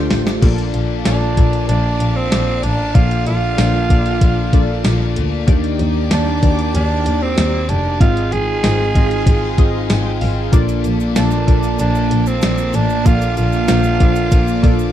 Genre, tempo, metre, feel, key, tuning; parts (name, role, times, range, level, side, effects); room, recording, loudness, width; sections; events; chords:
1980s-style pop; 95 BPM; 4/4; straight; Bb major; A4 = 439 Hz
chorused retro synth keys; accompaniment; 0.0-14.9 s; Ab2 to Ab5; -21 LUFS; left 1 dB
string machine, violins; sustained chords; 0.0-14.9 s; Bb3 to D6; -26 LUFS; equal; ensemble chorus
warm double bass; bass; 0.1-14.9 s; F1 to Eb2; -18 LUFS; equal
gated 80s digital drum machine; drums; 0.1-14.8 s; crash cymbal, hi-hat, kick drum, snare drum, tambourine; -15 LUFS; equal; gated reverb, gated reverb snare
tube shaker; percussion; 0.3-0.4, 10.5-14.9 s; -39 LUFS; right 23 dB
heavy high-gain guitar; accompaniment; 0.4-14.9 s; Ab2 to Bb3; -30 LUFS; left 14 dB; distortion, ensemble chorus
growling tenor saxophone; melody; 1.1-14.9 s; C4 to Ab4; -21 LUFS; right 4 dB; slapback echo
little or no reverb; dry, close 1970s-style studio recording; -13 LUFS; side -11 dB against mid
0.4-14.9 A section
drum fill 0.0-0.4; synth keys fill 9.6-10.5
0.4 Bbmaj7; 5.5 Ebmaj7; 8.0 Ab6; 10.5 Bbmaj7